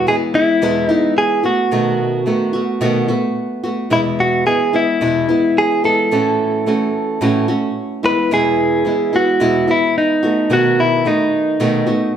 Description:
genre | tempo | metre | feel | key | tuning
pop | 109 BPM | 4/4 | swing 55% on 16ths | E major | A4 = 438 Hz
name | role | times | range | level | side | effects
direct-recorded clean electric guitar | melody | 0.0-12.1 s | D#4 to B4 | -16 LUFS | right 1 dB | none
nylon-string guitar | accompaniment | 0.0-12.2 s | E2 to F#4 | -17 LUFS | equal | none
room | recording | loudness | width
moderate large studio reverb, RT60 1.1 s | band playing live in one room | -14 LUFS | side -9 dB against mid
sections
0.0-12.2 A section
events
none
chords
0.0 E; 1.4 B7; 3.9 E; 6.1 A6; 8.0 E; 10.2 B7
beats
0.07 0.62 1.17 | 1.72 2.27 2.82 3.37 | 3.92 4.46 5.01 5.56 | 6.11 6.66 7.21 7.76 | 8.31 8.86 9.41 9.96 | 10.50 11.05 11.60 12.15

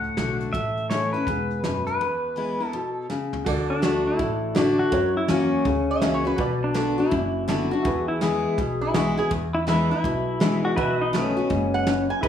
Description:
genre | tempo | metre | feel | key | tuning
honky-tonk and classic country | 164 BPM | 4/4 | swing 64% on 8ths | unclear | A4 = 439 Hz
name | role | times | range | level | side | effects
pedal steel guitar | melody | 0.0-12.1 s | C#4 to F#5 | -26 LUFS | left 1 dB | none
picked steel-string acoustic guitar | accompaniment | 0.0-12.3 s | E2 to F#4 | -25 LUFS | left 3 dB | none
upright bass | bass | 0.0-12.3 s | E1 to F#2 | -31 LUFS | equal | none
soft brush drum kit | drums | 0.0-12.3 s | crash cymbal, hi-hat, kick drum, snare drum, toms | -28 LUFS | right 1 dB | none
honky-tonk upright piano | accompaniment | 3.4-12.3 s | D#4 to D5 | -32 LUFS | right 5 dB | none
lap resonator guitar | second line | 5.9-6.5, 8.8-9.3, 11.7-12.3 s | E4 to G#5 | -27 LUFS | right 4 dB | none
pedal steel guitar | sustained chords | 9.7-12.3 s | B4 to E5 | -30 LUFS | right 4 dB | none
room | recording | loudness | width
light reverb, studio reverb | rough home demo mix | -21 LUFS | side -9 dB against mid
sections
0.0-3.5 A section; 3.5-12.3 B section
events
break 2.0-3.5; drum fill 3.1-3.5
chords
0.0 D; 0.5 A; 2.0 E; 3.5 D; 4.9 F#7; 6.4 Bm; 7.8 E; 10.8 B7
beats
0.17 | 0.54 0.90 1.27 1.63 | 2.00 2.37 2.73 3.10 | 3.46 3.83 4.20 4.56 | 4.93 5.29 5.66 6.02 | 6.39 6.75 7.12 7.48 | 7.85 8.21 8.58 8.95 | 9.31 9.68 10.04 10.41 | 10.77 11.14 11.50 11.87 | 12.23

